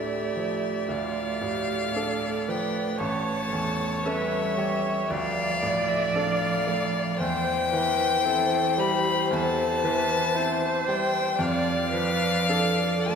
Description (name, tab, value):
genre	classical, slow romantic movement for piano quintet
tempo	57 BPM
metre	4/4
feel	rubato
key	unclear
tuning	A4 = 436 Hz
part	warm violin	melody	0.0-13.2 s	E5 to B5	-28 LUFS	left 6 dB	none
part	dark violin	second line	0.0-13.2 s	C5 to D5	-31 LUFS	left 1 dB	none
part	warm cello	second line	0.0-13.2 s	E3 to A3	-33 LUFS	right 4 dB	none
part	bright grand piano	accompaniment	0.0-13.2 s	A1 to A4	-30 LUFS	right 1 dB	none
part	dark viola	accompaniment	0.0-13.2 s	F4 to D5	-30 LUFS	right 3 dB	none
room	wet cathedral reverb, RT60 4.5 s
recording	recorded in a church or concert hall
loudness	-23 LUFS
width	side -6 dB against mid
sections	0.0-13.2 A section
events	none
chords	0.0 Dm; 3.0 A7; 5.1 Dm; 7.2 C/E; 11.4 Dm/F